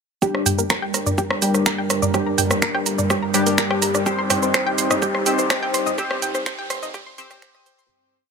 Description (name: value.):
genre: melodic techno.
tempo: 125 BPM.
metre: 4/4.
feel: straight.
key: G minor.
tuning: A4 = 443 Hz.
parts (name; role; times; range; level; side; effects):
dark analog pad; sustained chords; 0.2-7.9 s; G3 to Bb4; -26 LUFS; right 2 dB; chorus, sidechain pumping.
analog pluck; arpeggios; 0.2-7.8 s; G4 to Eb6; -25 LUFS; right 1 dB; chorus, sidechain pumping, dub echo.
sync-sweep polysynth; stabs; 0.2-7.9 s; G3 to C5; -24 LUFS; left 2 dB; chorus, phaser, sidechain pumping, dub echo.
bowed-like drone; drone; 1.5-8.0 s; G2 to G3; -31 LUFS; equal; built-in reverb, sidechain pumping.
electronic kick drum; drums; 0.2-7.5 s; none; -28 LUFS; equal; high-pass filter on kick, high-pass filter on room.
house drum kit; drums; 0.2-7.9 s; finger snaps, hi-hat, rim click, shaker, toms; -22 LUFS; right 2 dB; none.
riser; sound effects; 1.8-7.9 s; none; -34 LUFS; equal; none.
fat analog bass; bass; 0.3-7.9 s; G1; -38 LUFS; equal; none.
room: light reverb.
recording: high-pass filter.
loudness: -18 LUFS.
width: side -5 dB against mid.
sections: 0.2-7.9 build.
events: build-up 0.2-7.9; filter sweep on synth arpeggio sound 0.2-7.9; filter sweep on analog polysynth 0.2-7.9; riser 1.8-7.9; fade-out 5.3-7.9.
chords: 0.2 Gm; 4.1 Cm/G.